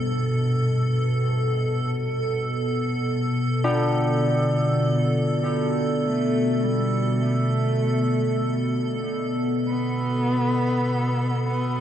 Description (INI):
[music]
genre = dark ambient drone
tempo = 50 BPM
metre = 4/4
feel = straight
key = unclear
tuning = A4 = 440 Hz
[part]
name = carillon bells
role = arpeggios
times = 0.0-10.8 s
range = G2 to D4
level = -29 LUFS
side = left 1 dB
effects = diffuse ambient delay
[part]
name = analog drone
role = drone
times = 0.0-11.8 s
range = B2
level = -23 LUFS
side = equal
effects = chorus
[part]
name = icy glass pad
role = texture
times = 0.0-11.8 s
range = A4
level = -29 LUFS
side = right 2 dB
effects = chorus, built-in reverb
[part]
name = dark cello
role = melody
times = 6.1-11.8 s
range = G3 to B3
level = -28 LUFS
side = equal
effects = diffuse ambient delay
[sound]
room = wet cathedral reverb, RT60 5.8 s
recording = worn, warbling old tape, cassette tape, warbly pitch drift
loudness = -21 LUFS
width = side -10 dB against mid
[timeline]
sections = 0.0-11.8 A section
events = fade-in on cello 0.0-11.8; filter sweep on synth drone 0.0-11.8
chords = none